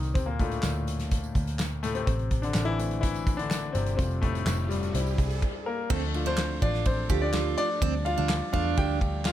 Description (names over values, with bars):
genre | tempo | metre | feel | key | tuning
piano-driven pop | 125 BPM | 4/4 | straight | D minor | A4 = 441 Hz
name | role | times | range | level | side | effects
clear concert grand piano | accompaniment | 0.0-9.3 s | G2 to G5 | -30 LUFS | left 3 dB | none
vintage muted picked electric bass | bass | 0.0-9.3 s | F1 to E2 | -30 LUFS | equal | none
loose indie drum kit | drums | 0.0-9.3 s | crash cymbal, handclaps, hi-hat, kick drum, ride cymbal, snare drum | -30 LUFS | equal | none
tambourine | percussion | 0.0-5.3 s | none | -47 LUFS | right 22 dB | none
riser | sound effects | 3.6-5.4 s | none | -42 LUFS | right 4 dB | none
percussive tonewheel organ | sustained chords | 5.9-9.3 s | F3 to D4 | -38 LUFS | right 7 dB | chorus vibrato, slow rotary speaker
picked steel-string acoustic guitar | riff | 5.9-9.0 s | C4 to G4 | -32 LUFS | right 19 dB | none
room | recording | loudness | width
little or no reverb | none | -25 LUFS | side -12 dB against mid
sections
0.0-5.9 A section; 5.9-9.3 B section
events
grand piano solo 0.0-5.9, 5.9-9.3; riser 3.6-5.9; stop 5.4-5.9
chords
0.2 Dm; 2.1 Am; 4.0 Fadd9; 4.9 C; 5.9 Dm